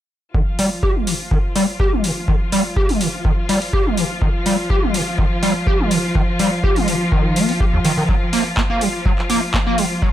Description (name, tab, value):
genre	acid house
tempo	124 BPM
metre	4/4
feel	straight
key	Eb major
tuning	A4 = 440 Hz
part	rich studio string section	sustained chords	0.3-10.1 s	F3 to F4	-24 LUFS	equal	vintage 12-bit sampler grit, sidechain pumping
part	overdriven acid bass	riff	0.3-10.1 s	Eb2 to G4	-19 LUFS	equal	distortion, tube saturation, ensemble chorus, sidechain pumping, tape echo
part	electronic kick drum	drums	0.3-10.1 s	none	-19 LUFS	equal	small room reverb
part	electro analog drum machine	drums	0.6-9.9 s	handclaps, hi-hat	-24 LUFS	equal	small room reverb
room	moderate studio reverb, RT60 0.6 s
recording	none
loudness	-16 LUFS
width	side -12 dB against mid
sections	0.3-10.1 A section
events	filter sweep on acid bass 0.3-10.1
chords	0.3 Ebadd9; 8.1 Gbmaj7